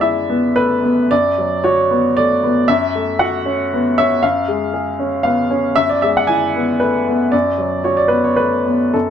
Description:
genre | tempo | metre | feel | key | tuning
neoclassical minimalist piano | 115 BPM | 3/4 | rubato | unclear | A4 = 439 Hz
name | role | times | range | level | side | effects
clear upright piano | solo | 0.0-9.1 s | F#2 to G#5 | -14 LUFS | equal | none
room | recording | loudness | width
light reverb | none | -14 LUFS | side -8 dB against mid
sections
0.0-9.1 A section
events
none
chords
0.0 E/F#; 1.1 Bm/F#; 2.7 F#m; 4.2 C#/F#; 5.8 E/F#; 7.3 Bm/F#

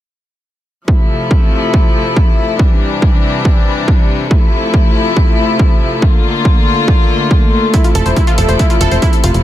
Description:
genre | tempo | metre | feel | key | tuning
uplifting trance | 140 BPM | 4/4 | straight | F major | A4 = 440 Hz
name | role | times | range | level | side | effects
rich chamber string section | sustained chords | 0.9-9.4 s | C3 to F4 | -15 LUFS | left 3 dB | sidechain pumping
electronic kick drum | drums | 0.9-9.1 s | none | -11 LUFS | equal | overdrive
analog pluck | arpeggios | 7.7-9.3 s | E4 to C5 | -17 LUFS | right 2 dB | chorus, sidechain pumping, ping-pong delay
electronic hi-hat | drums | 7.7-9.4 s | none | -23 LUFS | left 1 dB | overdrive
tight sequencer bass | bass | 8.0-9.4 s | F1 | -13 LUFS | equal | sidechain pumping
room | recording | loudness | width
little or no reverb | none | -9 LUFS | side -13 dB against mid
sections
0.9-9.4 A section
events
none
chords
0.9 Fmaj7; 2.6 Cadd9; 4.3 Fmaj7; 6.0 Bbmaj7; 7.7 Fmaj7

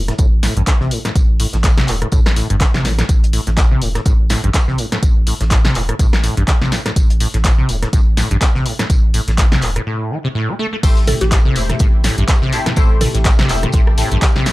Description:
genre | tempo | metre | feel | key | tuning
acid house | 124 BPM | 4/4 | swing 56% on 16ths | A minor pentatonic | A4 = 440 Hz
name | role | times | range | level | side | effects
deep acid bass | riff | 0.0-14.5 s | G2 to A3 | -21 LUFS | equal | overdrive, ensemble chorus, digital delay
saturated sub bass | bass | 0.0-14.4 s | E1 to A1 | -18 LUFS | equal | sidechain pumping
cloth-damped thuddy drum kit | drums | 0.1-14.5 s | hi-hat, snare drum, tambourine | -32 LUFS | equal | none
punchy analog drum machine | drums | 0.1-14.5 s | crash cymbal, handclaps, hi-hat, rim click, snare drum, toms | -20 LUFS | equal | none
electronic kick drum | drums | 0.2-14.3 s | none | -14 LUFS | equal | none
lush unison pad | sustained chords | 10.8-14.5 s | C3 to G4 | -27 LUFS | left 1 dB | chorus, sidechain pumping
band-passed chord stab | stabs | 10.8-14.2 s | A3 to C5 | -24 LUFS | left 3 dB | phaser, wide subtle chorus, cassette tape, digital delay
mallet-like synth pluck | melody | 11.1-13.4 s | G4 to A4 | -23 LUFS | right 1 dB | chorus, digital delay
room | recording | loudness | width
light reverb | dark, warm production | -12 LUFS | side -19 dB against mid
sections
0.0-10.8 A section; 10.8-14.5 B section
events
break 9.9-10.8; drop 10.8-14.5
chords
0.0 N.C.; 10.8 Am7

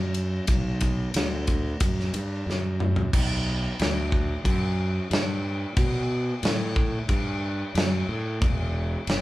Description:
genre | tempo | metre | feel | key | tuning
stoner and doom metal | 91 BPM | 4/4 | straight | B minor | A4 = 443 Hz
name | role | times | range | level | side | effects
fuzz fingered electric bass | bass | 0.0-9.2 s | E1 to B2 | -27 LUFS | equal | overdrive, tube saturation
big rock drum kit | drums | 0.1-9.2 s | crash cymbal, kick drum, ride cymbal, snare drum, toms | -26 LUFS | equal | none
room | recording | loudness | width
light reverb | band playing live in one room | -23 LUFS | side -17 dB against mid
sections
0.0-3.1 A section; 3.1-9.2 B section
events
drum fill 2.5-3.1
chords
none

